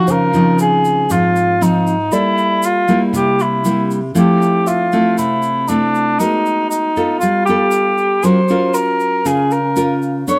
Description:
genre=bossa nova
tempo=118 BPM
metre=4/4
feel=straight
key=unclear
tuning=A4 = 443 Hz
part: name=dark cor anglais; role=melody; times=0.0-10.4 s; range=D4 to Db5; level=-18 LUFS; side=equal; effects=none
part: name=nylon-string guitar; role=accompaniment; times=0.0-10.4 s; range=Ab2 to Db5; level=-18 LUFS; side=equal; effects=none
part: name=dark baby grand piano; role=accompaniment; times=0.1-6.3 s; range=C5 to E5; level=-32 LUFS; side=equal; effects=none
part: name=egg shaker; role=percussion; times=0.1-10.4 s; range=none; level=-34 LUFS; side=equal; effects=none
room=light reverb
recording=none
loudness=-15 LUFS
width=mono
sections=0.1-10.4 A section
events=none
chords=0.1 Dbmaj9; 2.1 Gm9; 3.1 C7; 4.2 Fmaj7; 6.2 Abm9; 7.2 G9; 8.2 Gbmaj7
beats=| 0.08 0.59 1.10 1.61 | 2.12 2.63 3.14 3.65 | 4.16 4.67 5.17 5.68 | 6.19 6.70 7.21 7.72 | 8.23 8.74 9.25 9.76 | 10.27

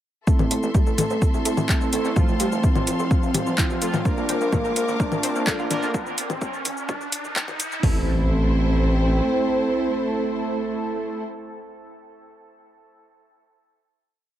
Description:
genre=melodic techno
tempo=127 BPM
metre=4/4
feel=straight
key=A phrygian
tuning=A4 = 440 Hz
part: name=expressive synth lead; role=melody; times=0.3-11.2 s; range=A3 to D4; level=-27 LUFS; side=equal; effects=chorus, sidechain pumping, dub echo
part: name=rich studio string section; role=sustained chords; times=0.3-11.2 s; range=A3 to D6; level=-32 LUFS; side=left 1 dB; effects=sidechain pumping
part: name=analog pluck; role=arpeggios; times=0.3-8.1 s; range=E3 to Bb4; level=-31 LUFS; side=equal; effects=ensemble chorus, sidechain pumping, dub echo
part: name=analog synth brass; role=stabs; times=0.3-11.2 s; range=F3 to Bb4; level=-29 LUFS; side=right 3 dB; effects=chorus, sidechain pumping, dub echo
part: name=deep house drum kit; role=drums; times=0.3-7.9 s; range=hi-hat, kick drum, toms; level=-21 LUFS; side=equal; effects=overdrive
part: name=deep house drum kit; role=drums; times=0.3-7.8 s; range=congas, handclaps, hi-hat, shaker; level=-27 LUFS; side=left 2 dB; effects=overdrive, dub echo
part: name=riser and impact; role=sound effects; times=4.1-11.3 s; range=none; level=-34 LUFS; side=equal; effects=none
part: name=ethereal airy pad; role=texture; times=1.2-11.4 s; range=E4 to A5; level=-33 LUFS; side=right 1 dB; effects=ensemble chorus, built-in reverb, sidechain pumping
part: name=gritty driven synth bass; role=bass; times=0.4-9.2 s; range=F1 to F2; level=-26 LUFS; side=equal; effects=sidechain pumping, high-pass filter
room=moderate spring reverb, RT60 1.7 s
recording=echo-heavy mix, high-pass filter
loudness=-20 LUFS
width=side -12 dB against mid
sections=0.3-7.8 build; 7.8-11.6 final chord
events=build-up 0.3-7.8; filter sweep on synth pluck 0.3-5.9; filter sweep on analog synth lead 0.3-5.9; filter sweep 0.3-7.8; riser 4.1-7.8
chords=0.3 Am; 2.2 F; 4.1 Bb; 5.9 N.C.; 7.8 Am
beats=| 0.27 0.75 1.22 1.69 | 2.16 2.63 3.11 3.58 | 4.05 4.53 5.00 5.47 | 5.94 6.42 6.89 7.36 | 7.83 8.30 8.78 9.25 | 9.72 10.20 10.67 11.14

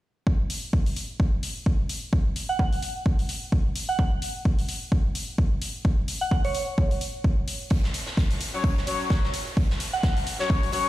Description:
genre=bass house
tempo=129 BPM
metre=4/4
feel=swing 57% on 16ths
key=unclear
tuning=A4 = 441 Hz
part: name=electronic kick drum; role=drums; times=0.3-10.6 s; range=none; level=-22 LUFS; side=equal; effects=overdrive
part: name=electronic hi-hat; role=drums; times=0.5-10.8 s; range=none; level=-35 LUFS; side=left 2 dB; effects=overdrive
part: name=soft synth bell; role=melody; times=2.5-6.9, 9.9-10.1 s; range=C#5 to F#5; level=-30 LUFS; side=right 3 dB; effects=chorus, tape echo
part: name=oversized low-tuned drum kit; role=drums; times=7.7-10.9 s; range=hi-hat, snare drum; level=-34 LUFS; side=right 1 dB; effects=sidechain pumping on hats, high-pass filter on hats, high-pass filter on snare, high-pass filter on room
part: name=warm horn section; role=stabs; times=8.5-10.9 s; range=F#3 to C#5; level=-28 LUFS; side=left 4 dB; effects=sidechain pumping, tape echo
room=small room reverb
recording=played on a big sound system in a bare room, stone room reverb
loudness=-23 LUFS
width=side -16 dB against mid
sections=0.3-10.9 A section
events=none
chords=0.3 F#5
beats=| 0.27 0.73 1.20 1.66 | 2.13 2.59 3.06 3.52 | 3.99 4.45 4.92 5.38 | 5.85 6.31 6.78 7.24 | 7.71 8.17 8.64 9.11 | 9.57 10.04 10.50

